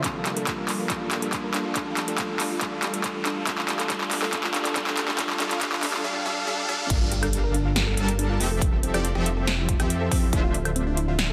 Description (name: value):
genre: future bass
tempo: 140 BPM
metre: 4/4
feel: half-time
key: D minor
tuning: A4 = 440 Hz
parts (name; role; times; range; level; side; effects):
- bell-like tine electric piano; accompaniment; 0.0-6.9 s; G3 to A4; -36 LUFS; equal; sidechain pumping, dub echo
- ethereal airy pad; sustained chords; 0.0-11.3 s; D2 to E6; -43 LUFS; equal; none
- thumb-piano-like synth pluck; arpeggios; 0.0-11.3 s; C4 to Bb4; -36 LUFS; equal; chorus, cassette tape, sidechain pumping, dub echo
- supersaw stab; riff; 0.0-11.3 s; D3 to A5; -33 LUFS; equal; sidechain pumping, dub echo
- big-room dance drum kit; drums; 0.0-11.3 s; crash cymbal, handclaps, hi-hat, snare drum, woodblock; -30 LUFS; equal; none
- electronic kick drum; drums; 0.0-10.4 s; none; -30 LUFS; equal; none
- riser and impact; sound effects; 0.0-8.6 s; none; -38 LUFS; equal; none
- detuned saw bass; bass; 6.9-11.3 s; D1 to F2; -29 LUFS; equal; chorus, sidechain pumping
room: moderate lush hall reverb, RT60 1.9 s, digital ambience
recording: dense, heavily limited modern master, high-pass filter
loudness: -25 LUFS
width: mono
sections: 0.0-6.9 A section; 6.9-11.3 B section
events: build-up 0.0-6.9; drum fill 0.0-6.0; riser 0.0-6.9; filter sweep on supersaw synth 0.0-6.9; drop 6.9-11.3; impact 6.9-8.6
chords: 0.0 Gm9; 1.8 Fmaj9; 3.5 Dm9; 6.9 Gm9; 8.6 Fmaj9; 10.3 Dm9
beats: | 0.04 0.47 0.90 1.33 | 1.76 2.19 2.62 3.04 | 3.47 3.90 4.33 4.76 | 5.19 5.62 6.04 6.47 | 6.90 7.33 7.76 8.19 | 8.62 9.04 9.47 9.90 | 10.33 10.76 11.19